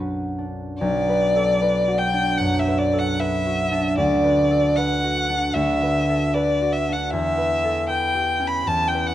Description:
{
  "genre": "classical, romantic duo for violin and harp",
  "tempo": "76 BPM",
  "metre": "4/4",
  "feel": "rubato",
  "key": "B minor",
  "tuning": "A4 = 438 Hz",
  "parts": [
    { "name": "concert harp", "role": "accompaniment", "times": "0.0-9.1 s", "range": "B1 to B4", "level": "-22 LUFS", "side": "right 1 dB", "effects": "none" },
    { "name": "clear violin", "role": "melody", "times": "0.8-9.1 s", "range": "D5 to B5", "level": "-21 LUFS", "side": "left 1 dB", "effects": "none" }
  ],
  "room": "light reverb",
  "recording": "close, detailed microphones",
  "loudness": "-18 LUFS",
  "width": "side -12 dB against mid",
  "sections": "0.8-9.1 A section",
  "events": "none",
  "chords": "0.0 Bm; 4.0 Bm/D; 7.1 C#m7b5/E",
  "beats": "| 0.79 1.59 2.39 3.18 | 3.97 4.76 5.55 6.34 | 7.11 7.88 8.65"
}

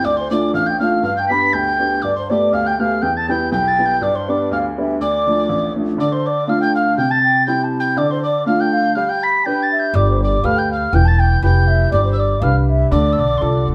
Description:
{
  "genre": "celtic folk, Celtic polka",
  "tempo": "121 BPM",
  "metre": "2/4",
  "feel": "swing 54% on 8ths",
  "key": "D dorian",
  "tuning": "A4 = 440 Hz",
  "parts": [
    { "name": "mellow baroque flute", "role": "melody", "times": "0.0-13.6 s", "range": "C5 to B5", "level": "-22 LUFS", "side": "equal", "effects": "plate reverb" },
    { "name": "mellow hollow tin whistle", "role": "second line", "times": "0.0-13.7 s", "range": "C6 to B6", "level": "-23 LUFS", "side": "equal", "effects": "none" },
    { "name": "clear upright piano", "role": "accompaniment", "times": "0.0-13.7 s", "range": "A1 to B4", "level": "-23 LUFS", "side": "equal", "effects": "none" },
    { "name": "upright bass", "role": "bass", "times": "9.9-13.7 s", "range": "E1 to D2", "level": "-17 LUFS", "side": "equal", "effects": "none" }
  ],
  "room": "wet studio reverb, RT60 0.7 s",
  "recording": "heard from further back in the room",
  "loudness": "-17 LUFS",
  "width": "mono",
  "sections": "0.0-6.0 A section; 6.0-13.7 A section",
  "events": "none",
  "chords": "0.0 Dm; 1.0 G; 2.0 Gadd9; 3.0 Em; 4.0 G; 5.0 Dm; 7.0 C; 8.0 Dm; 9.0 G; 9.9 Gadd9; 10.9 Em; 11.9 G; 12.9 Dm",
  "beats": "| 0.04 0.54 | 1.04 1.53 | 2.03 2.52 | 3.02 3.51 | 4.01 4.50 | 5.00 5.49 | 5.99 6.48 | 6.98 7.47 | 7.97 8.46 | 8.96 9.45 | 9.95 10.44 | 10.94 11.43 | 11.93 12.42 | 12.92 13.41"
}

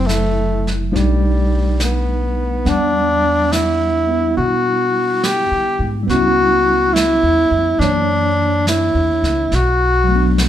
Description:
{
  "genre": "jazz ballad",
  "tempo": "70 BPM",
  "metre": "4/4",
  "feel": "swing 68% on 8ths",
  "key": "unclear",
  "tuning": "A4 = 438 Hz",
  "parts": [
    { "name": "breathy tenor saxophone", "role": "melody", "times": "0.0-10.4 s", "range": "F3 to G4", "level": "-16 LUFS", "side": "equal", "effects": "none" },
    { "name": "barky tine electric piano", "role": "accompaniment", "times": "0.0-10.5 s", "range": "C3 to F#5", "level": "-21 LUFS", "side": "equal", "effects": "medium stereo tremolo" },
    { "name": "upright bass", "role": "bass", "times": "0.0-10.5 s", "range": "F#1 to D3", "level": "-20 LUFS", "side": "equal", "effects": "none" },
    { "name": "vintage brush drum kit", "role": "drums", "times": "0.1-10.5 s", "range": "brushed snare drum, hi-hat, snare drum", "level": "-25 LUFS", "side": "right 2 dB", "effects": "none" }
  ],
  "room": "moderate large studio reverb, RT60 1.0 s",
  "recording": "minimal, uncompressed stereo recording",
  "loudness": "-14 LUFS",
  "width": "side -11 dB against mid",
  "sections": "0.0-2.7 A section; 2.7-10.5 B section",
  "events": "none",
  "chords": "0.0 F#m7b5; 0.9 B7alt; 2.7 Em9; 6.1 C#m7b5; 7.8 F#7b13; 9.5 Bm7",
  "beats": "0.08 0.94 1.80 | 2.66 3.52 4.37 5.23 | 6.09 6.95 7.80 8.66 | 9.52 10.38"
}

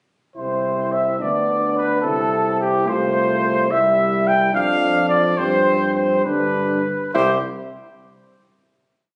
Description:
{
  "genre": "classical, brass quintet",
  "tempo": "71 BPM (dotted quarters)",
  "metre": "6/8",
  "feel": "uneven beats",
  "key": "C major",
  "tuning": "A4 = 440 Hz",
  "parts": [
    { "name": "mellow trumpet", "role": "melody", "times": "0.4-7.4 s", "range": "G4 to G5", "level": "-24 LUFS", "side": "equal", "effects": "none" },
    { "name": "clear flugelhorn", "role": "second line", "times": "0.4-7.4 s", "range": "G4 to G5", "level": "-25 LUFS", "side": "equal", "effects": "none" },
    { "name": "clear French horn", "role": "accompaniment", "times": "0.4-7.4 s", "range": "C4 to F4", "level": "-26 LUFS", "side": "equal", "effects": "none" },
    { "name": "mellow trombone", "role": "accompaniment", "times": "0.4-7.4 s", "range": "D3 to C4", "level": "-28 LUFS", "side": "equal", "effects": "none" },
    { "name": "warm tuba", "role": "bass", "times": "0.4-7.4 s", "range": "C2 to G2", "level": "-28 LUFS", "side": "equal", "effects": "none" }
  ],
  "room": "moderate recital hall reverb, RT60 1.6 s",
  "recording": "recorded on a phone in the room, club reverb, nothing above 10.4 kHz",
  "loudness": "-19 LUFS",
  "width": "mono",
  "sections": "0.4-7.1 A section; 7.1-8.9 final chord",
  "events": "slowing down 2.9-7.1",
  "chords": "0.4 C; 1.2 Bm/D; 2.0 C; 2.9 F/C; 3.7 C; 4.5 Dm/F; 5.4 G7sus4; 6.2 G; 7.1 C",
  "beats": "| 0.37 1.21 | 2.04 2.89 | 3.71 4.54 | 5.38 6.25 | 7.14"
}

